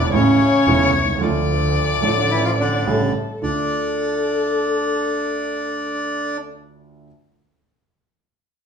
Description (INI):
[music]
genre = tango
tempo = 110 BPM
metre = 4/4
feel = rubato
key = D harmonic minor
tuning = A4 = 440 Hz
[part]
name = bandoneon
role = melody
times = 0.0-6.4 s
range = C#3 to A4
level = -21 LUFS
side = equal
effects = none
[part]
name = dark violin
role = second line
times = 0.0-6.4 s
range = A4 to D5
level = -22 LUFS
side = left 4 dB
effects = none
[part]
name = warm baby grand piano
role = accompaniment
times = 0.0-7.1 s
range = E1 to F4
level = -24 LUFS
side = right 4 dB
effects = none
[part]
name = warm double bass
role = bass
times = 0.0-3.7 s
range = E1 to D2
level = -22 LUFS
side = right 1 dB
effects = none
[sound]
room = wet large studio reverb, RT60 0.8 s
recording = band playing live in one room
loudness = -17 LUFS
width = side -7 dB against mid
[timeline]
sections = 0.0-3.4 A section; 3.4-5.6 B section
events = none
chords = 0.1 A; 1.2 Dm; 2.9 A7; 3.4 Dm